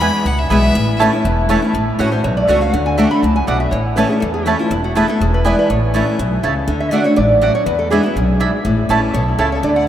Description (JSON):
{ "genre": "bluegrass", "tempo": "243 BPM", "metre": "4/4", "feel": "straight", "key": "A major", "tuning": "A4 = 440 Hz", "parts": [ { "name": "clear fiddle", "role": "second line", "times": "0.0-1.0, 9.1-9.9 s", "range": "C#4 to B5", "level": "-25 LUFS", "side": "left 3 dB", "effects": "none" }, { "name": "picked steel-string acoustic guitar", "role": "accompaniment", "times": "0.0-9.9 s", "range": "E2 to F#4", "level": "-18 LUFS", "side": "left 2 dB", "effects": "none" }, { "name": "mandolin", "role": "stabs", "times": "0.0-9.5 s", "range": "A3 to B5", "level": "-20 LUFS", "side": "right 4 dB", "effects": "none" }, { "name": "upright bass", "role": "bass", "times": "0.0-9.9 s", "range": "E1 to E2", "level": "-19 LUFS", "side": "equal", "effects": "none" }, { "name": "lap resonator guitar", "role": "melody", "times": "2.1-9.9 s", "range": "E4 to B5", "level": "-19 LUFS", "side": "right 1 dB", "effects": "none" } ], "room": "wet cathedral reverb, RT60 6.7 s", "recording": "in a vast, echoing space", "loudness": "-13 LUFS", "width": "side -10 dB against mid", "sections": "0.0-1.7 A section; 1.7-9.9 B section", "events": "fiddle solo 0.0-1.7", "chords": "0.0 E; 0.8 A; 1.7 A6; 2.7 D; 3.7 A; 4.7 Esus4; 5.2 E; 5.7 A; 6.7 D; 7.7 E7; 8.7 A" }